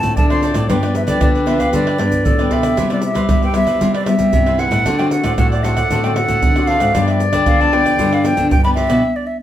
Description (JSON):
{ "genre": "samba and choro", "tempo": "115 BPM", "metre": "4/4", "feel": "straight", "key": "unclear", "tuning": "A4 = 440 Hz", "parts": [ { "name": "breathy silver concert flute", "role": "melody", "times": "0.0-9.4 s", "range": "D5 to C6", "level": "-19 LUFS", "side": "right 1 dB", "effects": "none" }, { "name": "nylon-string guitar", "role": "accompaniment", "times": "0.0-9.0 s", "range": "G2 to F#4", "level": "-21 LUFS", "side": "left 4 dB", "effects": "none" }, { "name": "nylon-string guitar", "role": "bass", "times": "0.0-9.0 s", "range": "G2 to G3", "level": "-19 LUFS", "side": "equal", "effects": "none" }, { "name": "tube shaker, surdo, pandeiro and tamborim", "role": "percussion", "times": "0.0-9.0 s", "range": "none", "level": "-19 LUFS", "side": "right 1 dB", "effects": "none" }, { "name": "mellow clarinet", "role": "second line", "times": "0.2-9.0 s", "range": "G4 to D5", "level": "-22 LUFS", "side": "left 3 dB", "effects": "slapback echo" }, { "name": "cavaquinho", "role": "accompaniment", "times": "0.3-9.0 s", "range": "D4 to F#5", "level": "-26 LUFS", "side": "right 2 dB", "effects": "none" } ], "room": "wet studio ambience, RT60 0.5 s", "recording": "heard from further back in the room", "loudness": "-13 LUFS", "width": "side -11 dB against mid", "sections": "0.0-9.4 A section", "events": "stop 9.0-9.4", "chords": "0.0 Dm7; 0.7 G7; 2.8 Cmaj7; 4.9 D7; 6.9 G7" }